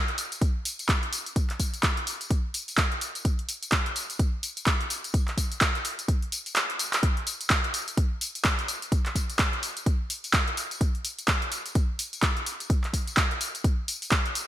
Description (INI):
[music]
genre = house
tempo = 127 BPM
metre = 4/4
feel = swing 59% on 16ths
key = none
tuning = none
[part]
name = punchy analog drum machine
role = drums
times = 0.1-14.5 s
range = handclaps, hi-hat, tambourine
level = -27 LUFS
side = equal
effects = gated reverb
[part]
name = electronic kick drum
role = drums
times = 0.4-14.2 s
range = none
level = -25 LUFS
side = equal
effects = none
[sound]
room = light reverb, digital ambience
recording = bright 1980s-style digital production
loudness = -24 LUFS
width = side -12 dB against mid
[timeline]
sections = 0.0-14.5 A section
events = kick drops out 6.6-7.0; drum fill 6.6-7.0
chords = none